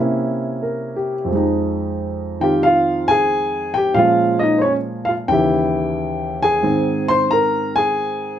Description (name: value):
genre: solo jazz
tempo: 90 BPM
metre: 4/4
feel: swing 68% on 8ths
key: F minor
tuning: A4 = 439 Hz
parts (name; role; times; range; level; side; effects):
- warm upright piano; solo; 0.0-8.4 s; Eb2 to C6; -16 LUFS; equal; none
room: moderate club ambience, RT60 0.5 s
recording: none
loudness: -16 LUFS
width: side -10 dB against mid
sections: 0.0-6.6 A section; 6.6-8.4 B section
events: none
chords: 0.0 C7b9; 1.3 Fm7; 4.0 Bbm7; 5.3 Eb7b9; 6.6 Ab